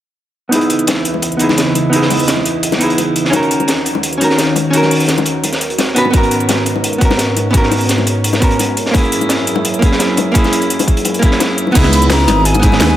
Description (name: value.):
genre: liquid drum and bass.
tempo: 171 BPM.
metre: 4/4.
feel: straight.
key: C# dorian.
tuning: A4 = 441 Hz.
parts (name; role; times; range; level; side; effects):
archtop guitar, miked and amplified; accompaniment; 0.5-13.0 s; A#3 to B4; -15 LUFS; right 1 dB; low-pass filter, dub echo.
warm analog pad; sustained chords; 0.5-13.0 s; G#2 to D#6; -20 LUFS; equal; chorus.
crunchy breakbeat drum kit; drums; 0.5-12.9 s; hi-hat, snare drum; -19 LUFS; equal; high-pass filter on hats, high-pass filter on snare, high-pass filter on room.
drum and bass drum kit; drums; 0.5-13.0 s; crash cymbal, hi-hat, shaker, snare drum; -19 LUFS; left 1 dB; none.
bongos; percussion; 0.5-12.8 s; none; -22 LUFS; left 6 dB; none.
electronic kick drum; drums; 6.1-12.7 s; none; -12 LUFS; equal; none.
swelling detuned saw bass; bass; 11.8-13.0 s; G#1 to D#2; -13 LUFS; equal; none.
breathy mellow silver concert flute; melody; 11.9-13.0 s; G#5 to B5; -16 LUFS; left 2 dB; digital delay.
room: moderate lush hall reverb, RT60 2.0 s.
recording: none.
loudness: -11 LUFS.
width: side -12 dB against mid.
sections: 0.5-11.8 A section; 11.8-13.0 B section.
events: filter sweep on hollow-body jazz guitar 0.5-11.8; kick drops out 11.4-11.8; drop 11.8-13.0.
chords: 0.5 C#m7; 3.3 D#m7; 6.0 G#m11; 8.8 F#9; 11.8 C#m7.